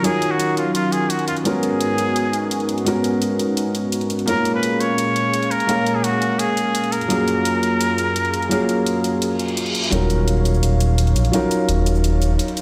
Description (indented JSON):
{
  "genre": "liquid drum and bass",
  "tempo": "170 BPM",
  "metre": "4/4",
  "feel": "straight",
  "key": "Eb minor",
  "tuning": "A4 = 440 Hz",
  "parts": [
    { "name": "trumpet with straight mute", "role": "melody", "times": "0.0-9.6 s", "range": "F4 to Db5", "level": "-25 LUFS", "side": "equal", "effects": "tape echo" },
    { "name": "felt-muted upright piano", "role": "accompaniment", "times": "0.0-12.6 s", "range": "Gb3 to F5", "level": "-23 LUFS", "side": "equal", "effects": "tape echo" },
    { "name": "airy breathy pad", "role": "sustained chords", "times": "0.0-12.6 s", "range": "Gb2 to F5", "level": "-28 LUFS", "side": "equal", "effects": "chorus" },
    { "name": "electronic hi-hat and shaker", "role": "drums", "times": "0.0-12.6 s", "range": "none", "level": "-30 LUFS", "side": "equal", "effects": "overdrive, studio reverb" },
    { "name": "reverse cymbal and riser", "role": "sound effects", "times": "9.4-12.6 s", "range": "none", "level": "-31 LUFS", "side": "equal", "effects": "none" },
    { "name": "smooth synth bass", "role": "bass", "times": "9.9-12.4 s", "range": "Eb1 to Bb1", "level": "-19 LUFS", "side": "equal", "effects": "none" }
  ],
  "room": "light reverb",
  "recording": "played on a big sound system in a bare room, stone room reverb",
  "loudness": "-19 LUFS",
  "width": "mono",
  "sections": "0.0-9.9 A section; 9.9-12.6 B section",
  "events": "filter sweep on analog synth pad 0.0-9.9; reverse cymbal 9.4-9.9; build-up 9.9-12.6",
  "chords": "0.0 Ebm9; 1.5 Abm11; 4.3 Bbm7; 6.9 Gbmaj9; 9.9 Ebm9"
}